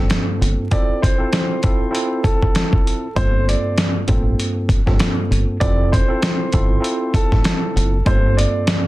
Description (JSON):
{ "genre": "hip hop, boom-bap hip-hop", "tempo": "98 BPM", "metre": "4/4", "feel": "swing 56% on 16ths", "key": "F major", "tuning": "A4 = 441 Hz", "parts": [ { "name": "tine electric piano", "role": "accompaniment", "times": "0.0-8.9 s", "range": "G2 to A4", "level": "-22 LUFS", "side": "right 1 dB", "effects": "medium stereo tremolo, cassette tape, high-pass filter, low-pass filter" }, { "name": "deep dub fingered electric bass", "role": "bass", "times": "0.0-8.4 s", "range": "F1 to A1", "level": "-18 LUFS", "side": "equal", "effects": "none" }, { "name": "dusty soul sampler-style drum kit", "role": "drums", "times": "0.1-8.8 s", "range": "hi-hat, kick drum, snare drum", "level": "-18 LUFS", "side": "equal", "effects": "none" }, { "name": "warm upright piano", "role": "melody", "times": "0.7-8.8 s", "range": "A4 to D5", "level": "-24 LUFS", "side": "equal", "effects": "high-pass filter, low-pass filter, plate reverb" } ], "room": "little or no reverb", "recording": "dense, heavily limited modern master, vinyl crackle, lossy compression artefacts", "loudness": "-15 LUFS", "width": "side -17 dB against mid", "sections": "0.0-8.9 A section", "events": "none", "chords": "0.0 Gm11; 0.7 Fmaj7; 3.2 Gm11; 5.6 Fmaj7; 8.1 Gm11" }